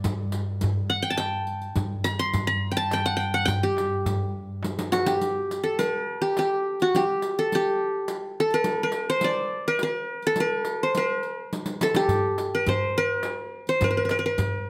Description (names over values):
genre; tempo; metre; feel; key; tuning
Arabic maqam ensemble; 105 BPM; 3/4; straight; G maqam suznak; A4 = 440 Hz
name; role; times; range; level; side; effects
qanun; melody; 0.0-14.7 s; F#4 to C6; -26 LUFS; equal; none
dark double bass; drone; 0.0-5.3 s; G2; -34 LUFS; equal; none
riq; percussion; 0.0-14.5 s; none; -36 LUFS; equal; none
darbuka; percussion; 0.1-5.1, 12.1-14.5 s; none; -32 LUFS; equal; none
room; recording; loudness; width
light reverb; close, detailed microphones; -25 LUFS; mono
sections
0.0-5.2 A section; 5.2-14.7 B section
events
drum fill 4.6-5.2, 11.5-12.1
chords
none